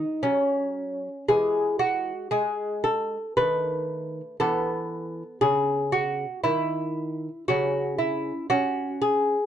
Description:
classical, baroque-style dance for lute; 58 BPM; 3/4; rubato; A4 = 441 Hz
lute; solo; 0.0-9.5 s; C#3 to B4; -23 LUFS; equal
moderate small room reverb, RT60 0.5 s; dark, warm production, nothing above 10.9 kHz; -23 LUFS; side -10 dB against mid
0.0-9.5 A section
0.0 C#5; 1.3 E; 3.4 B7/D#; 4.4 E5; 7.5 N.C.

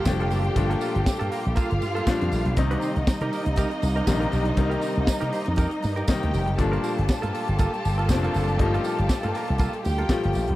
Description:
disco; 120 BPM; 4/4; swing 56% on 16ths; G minor; A4 = 440 Hz
dark studio string section; second line; 0.0-10.6 s; Eb4 to A5; -30 LUFS; right 1 dB
bright concert grand piano; accompaniment; 0.0-10.6 s; Bb2 to F4; -29 LUFS; left 4 dB
direct-recorded clean electric guitar; accompaniment; 0.0-10.5 s; Bb3 to C5; -32 LUFS; right 4 dB
warm studio string section; sustained chords; 0.0-10.6 s; C3 to A4; -32 LUFS; equal
slap bass with an envelope filter; bass; 0.1-10.6 s; F1 to C3; -25 LUFS; equal
tight funk drum kit; drums; 0.1-10.6 s; hi-hat, kick drum, snare drum; -23 LUFS; equal
tambourine; percussion; 0.1-10.5 s; -42 LUFS; right 10 dB
little or no reverb; dry, close 1970s-style studio recording; -21 LUFS; side -16 dB against mid
0.0-10.6 A section
0.0 Gm9; 2.6 Cm7; 6.6 Gm9

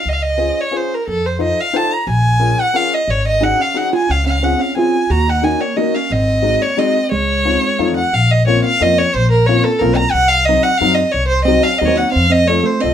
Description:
musette waltz; 178 BPM; 3/4; straight; Db major, Bb harmonic minor from 8.1 s; A4 = 440 Hz
rich violin; melody; 0.0-12.9 s; A4 to Bb5; -15 LUFS; right 1 dB
upright bass; bass; 0.1-12.9 s; Ab1 to Gb2; -18 LUFS; left 1 dB
warm upright piano; accompaniment; 0.4-12.9 s; Gb3 to C5; -19 LUFS; left 5 dB
hollow-body jazz guitar; second line; 3.4-7.9, 11.5-12.9 s; Ab3 to Gb4; -20 LUFS; right 4 dB
moderate studio reverb, RT60 0.6 s; -12 LUFS; side -9 dB against mid
0.1-8.1 A section; 8.1-12.9 B section
0.1 Dbmaj7; 1.1 F7; 2.1 Bbm7; 3.1 Ab7sus4; 4.1 Dbmaj7; 5.1 Ebm7; 6.1 Ab7; 7.1 Dbmaj9; 7.8 F7; 8.1 Bbmadd9; 10.1 Cdim; 12.2 F

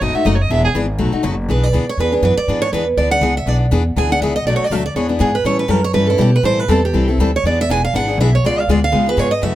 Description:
acoustic string swing (jazz manouche); 242 BPM; 4/4; swing 57% on 8ths; E mixolydian; A4 = 439 Hz
rich violin; second line; 0.0-0.7 s; G#4 to E5; -20 LUFS; right 3 dB
picked steel-string acoustic guitar; accompaniment; 0.0-9.6 s; B2 to A4; -19 LUFS; left 4 dB
upright bass; bass; 0.0-9.6 s; E1 to B2; -18 LUFS; equal
picked steel-string acoustic guitar; melody; 1.5-9.6 s; E4 to G#5; -18 LUFS; right 4 dB
little or no reverb; -14 LUFS; side -13 dB against mid
0.0-1.5 A section; 1.5-9.6 A section
violin solo 0.0-1.5; steel-string acoustic guitar solo 1.5-9.6
0.0 B7; 0.5 E7; 1.0 B7; 1.5 E7; 4.5 Bm7; 5.0 E7; 5.5 A7; 6.4 Am7; 7.4 E7; 8.4 C#7b9

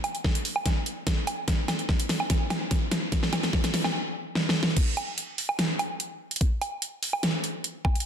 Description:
dubstep; 146 BPM; 4/4; half-time
dubstep drum kit; drums; 0.0-8.1 s; crash cymbal, hi-hat, snare drum, woodblock; -26 LUFS; right 1 dB; overdrive
electronic kick drum; drums; 0.2-7.9 s; -26 LUFS; equal; overdrive
moderate digital room reverb, RT60 1.1 s; dense, heavily limited modern master; -25 LUFS; side -8 dB against mid
0.0-4.8 A section; 4.8-8.1 B section
build-up 0.0-4.8; drum fill 0.0-3.9, 4.4-4.8; drop 4.8-8.1

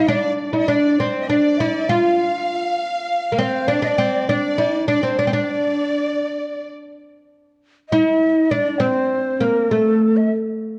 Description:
arabic; 100 BPM; 3/4; straight; D maqam bayati; A4 = 439 Hz
oud; melody; 0.0-10.3 s; A3 to F4; -20 LUFS; equal
breathy bright ney; second line; 0.0-10.3 s; A4 to F5; -26 LUFS; equal
warm studio violin section; second line; 0.0-6.7 s; C5 to F5; -29 LUFS; equal
moderate recital hall reverb, RT60 1.8 s; worn, warbling old tape, cassette tape, warbly pitch drift; -19 LUFS; mono
0.0-7.3 A section; 7.3-10.8 B section

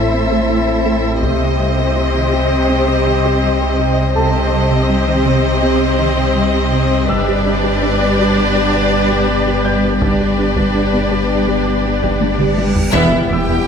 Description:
cinematic, hybrid orchestral and electronic film score; 82 BPM; 4/4; straight; A4 = 445 Hz
warm symphonic violin section; second line; 0.0-13.7 s; E4 to E5; -20 LUFS; left 2 dB
bright symphonic viola section; accompaniment; 0.0-13.6 s; B3 to A4; -20 LUFS; equal; low-pass filter
deep dark ambient pad; sustained chords; 0.0-13.7 s; G3 to E5; -20 LUFS; left 3 dB; chorus, built-in reverb, low-pass filter
resonant blip pluck; arpeggios; 0.0-13.6 s; C3 to A4; -23 LUFS; right 1 dB; phaser, low-pass filter, ping-pong delay
punchy sub bass; bass; 0.0-13.7 s; E1 to C2; -21 LUFS; equal
warm symphonic cello section; bass; 0.0-13.6 s; E2 to C3; -20 LUFS; right 2 dB
clear baby grand piano; texture; 0.0-13.7 s; A4 to G6; -26 LUFS; equal; ping-pong delay
taiko ensemble; drums; 1.2-2.7, 7.1-13.6 s; -21 LUFS; equal
reverse cymbal and impact; sound effects; 12.2-13.7 s; -28 LUFS; equal
rich symphonic violin section; melody; 12.9-13.7 s; E5 to G5; -22 LUFS; left 2 dB; low-pass filter
clear trombone section; sustained chords; 12.9-13.7 s; E3 to G3; -25 LUFS; right 4 dB; low-pass filter
mellow French horn section; sustained chords; 12.9-13.7 s; B3 to E4; -26 LUFS; left 3 dB
rubbery square bass; riff; 12.9-13.6 s; E2 to E3; -24 LUFS; right 2 dB
rich symphonic double bass section; bass; 12.9-13.4 s; E1; -23 LUFS; right 4 dB
warm tuba; bass; 12.9-13.4 s; E1; -25 LUFS; right 4 dB
wet scoring stage reverb, RT60 1.7 s; -12 LUFS; side -7 dB against mid
0.0-12.9 A section
build-up 0.0-12.9; drum fill 12.2-12.9; reverse cymbal 12.2-12.9; band accent 12.9-13.7; impact 12.9-13.7
0.0 Am; 1.2 Cm; 7.1 G; 12.9 Em

